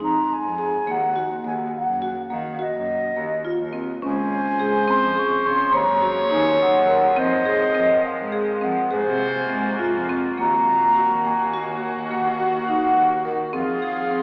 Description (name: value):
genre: contemporary instrumental, chamber music in an uneven meter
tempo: 209 BPM (eighths)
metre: 11/8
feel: straight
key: Eb dorian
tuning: A4 = 442 Hz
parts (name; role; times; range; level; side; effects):
- mellow baroque flute; melody; 0.0-14.2 s; Eb5 to Db6; -24 LUFS; equal; none
- marimba with medium mallets; arpeggios; 0.0-14.2 s; Bb3 to Bb4; -28 LUFS; equal; none
- dark cello; bass; 0.0-14.2 s; Db2 to F3; -34 LUFS; equal; none
- dark clarinet; second line; 4.0-14.2 s; Gb4 to Db5; -28 LUFS; equal; none
- warm woodwind section; sustained chords; 4.0-14.2 s; C3 to C5; -32 LUFS; equal; none
room: wet church reverb, RT60 3.2 s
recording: recorded in a church or concert hall, AM radio sound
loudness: -21 LUFS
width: mono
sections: 0.0-10.4 A section; 10.4-14.2 B section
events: none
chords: 0.0 Fm7; 0.9 Ebm; 4.0 Dbmaj7; 5.7 Ebm9; 7.2 Fm7; 8.9 Ab13; 10.4 Ebm; 13.5 Fm